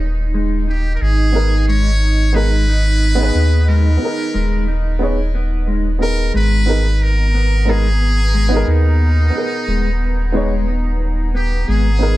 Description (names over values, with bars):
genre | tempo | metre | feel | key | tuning
trip hop | 90 BPM | 4/4 | swing 55% on 16ths | G# minor | A4 = 440 Hz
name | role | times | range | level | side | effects
dark analog pad | sustained chords | 0.0-12.2 s | B3 to A#5 | -27 LUFS | right 2 dB | chorus
soft dub sub bass | bass | 0.0-12.2 s | D#1 to D#2 | -15 LUFS | equal | none
mellow electric guitar | arpeggios | 0.3-11.9 s | G#3 to D#4 | -26 LUFS | left 3 dB | analog chorus, tape echo
trumpet with metal mute | melody | 0.7-12.2 s | D#4 to C#5 | -24 LUFS | equal | vintage 12-bit sampler grit, dub echo
dark upright piano | accompaniment | 1.3-12.2 s | B3 to C#5 | -22 LUFS | right 1 dB | harmonic tremolo, tape echo
room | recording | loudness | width
small room ambience | none | -14 LUFS | side -16 dB against mid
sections
0.0-12.2 A section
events
none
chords
0.0 G#madd9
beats
0.34 | 1.01 1.68 2.34 3.01 | 3.67 4.34 5.01 5.67 | 6.34 7.01 7.67 8.34 | 9.01 9.68 10.34 11.01 | 11.68